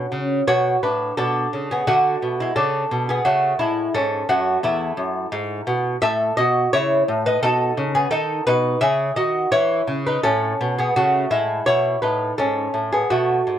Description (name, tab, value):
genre	classical, baroque-style dance for lute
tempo	86 BPM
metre	4/4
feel	rubato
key	A major, E major from 6.0 s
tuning	A4 = 440 Hz
part	lute	solo	0.0-13.6 s	E2 to E5	-18 LUFS	equal	none
room	little or no reverb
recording	dry, close 1970s-style studio recording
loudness	-18 LUFS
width	side -10 dB against mid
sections	0.0-13.6 A section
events	none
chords	0.5 Bm7; 3.3 A; 6.0 F#m7/A; 7.4 B; 8.8 C#m; 10.2 Amaj13; 11.7 E